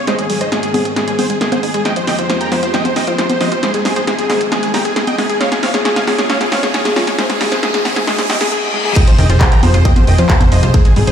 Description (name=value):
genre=uplifting trance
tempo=135 BPM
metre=4/4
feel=straight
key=unclear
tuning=A4 = 440 Hz
part: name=dense compressed supersaw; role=melody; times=0.0-11.1 s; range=F4 to Bb5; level=-18 LUFS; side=equal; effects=cassette tape, sidechain pumping, low-pass filter, digital delay
part: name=supersaw pad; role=sustained chords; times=0.0-11.1 s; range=Db2 to Ab4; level=-25 LUFS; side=equal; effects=phaser, sidechain pumping
part: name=wide unison pluck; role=arpeggios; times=0.1-11.1 s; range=Eb3 to Db5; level=-22 LUFS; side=left 1 dB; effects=sidechain pumping, digital delay
part: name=punchy analog drum machine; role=drums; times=0.1-11.1 s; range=congas, crash cymbal, handclaps, hi-hat, snare drum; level=-18 LUFS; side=equal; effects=none
part: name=riser and reverse cymbal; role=sound effects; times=4.4-9.0 s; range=none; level=-24 LUFS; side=left 1 dB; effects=none
part: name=electronic kick drum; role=drums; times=9.0-10.8 s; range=none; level=-11 LUFS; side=equal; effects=none
part: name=plucky analog bass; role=bass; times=9.2-11.1 s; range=F1 to F2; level=-11 LUFS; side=equal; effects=sidechain pumping
room=moderate huge ambient reverb, RT60 6.7 s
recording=played on a big sound system in a bare room, large studio reverb, high-pass filter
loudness=-12 LUFS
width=side -8 dB against mid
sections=0.0-9.0 A section; 9.0-11.1 B section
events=build-up 0.0-9.0; drum fill 0.0-8.5; filter sweep on synth arpeggio sound 0.0-9.0; filter sweep 0.0-9.0; riser 4.4-8.5; reverse cymbal 8.1-9.0; drop 9.0-11.1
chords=0.1 Ab; 1.9 Fmadd9; 3.6 Ab; 5.4 Db; 7.2 Ab; 9.0 Fmadd9